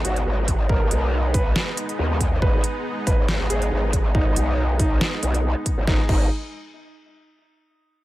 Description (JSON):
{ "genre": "heavy wobble dubstep", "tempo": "139 BPM", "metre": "4/4", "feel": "swing 54% on 16ths, half-time", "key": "G# minor", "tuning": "A4 = 440 Hz", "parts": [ { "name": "warm baby grand piano", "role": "melody", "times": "0.0-6.3 s", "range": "D#4 to B4", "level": "-30 LUFS", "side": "right 2 dB", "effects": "tape echo" }, { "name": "supersaw pad", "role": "sustained chords", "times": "0.0-6.1 s", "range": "G#3 to D#5", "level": "-30 LUFS", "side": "equal", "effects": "sidechain pumping" }, { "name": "growl bass", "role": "bass", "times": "0.0-6.3 s", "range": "G#1 to D#2", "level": "-22 LUFS", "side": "equal", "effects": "chorus, overdrive" }, { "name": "dubstep drum kit", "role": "drums", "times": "0.0-6.2 s", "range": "crash cymbal, hi-hat, snare drum", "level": "-26 LUFS", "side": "equal", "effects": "none" }, { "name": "impact", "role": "sound effects", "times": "0.1-0.7 s", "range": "none", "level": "barely audible", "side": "none", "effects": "none" }, { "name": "electronic kick drum", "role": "drums", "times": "0.5-6.2 s", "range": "none", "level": "-21 LUFS", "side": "equal", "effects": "none" } ], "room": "digital ambience", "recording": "none", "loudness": "-19 LUFS", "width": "side -16 dB against mid", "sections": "0.0-5.9 A section; 5.9-7.6 B section", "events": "impact 0.0-0.7", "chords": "0.0 G#m", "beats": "0.26 | 0.69 1.13 1.56 1.99 | 2.42 2.85 3.29 3.72 | 4.15 4.58 5.01 5.44 | 5.88" }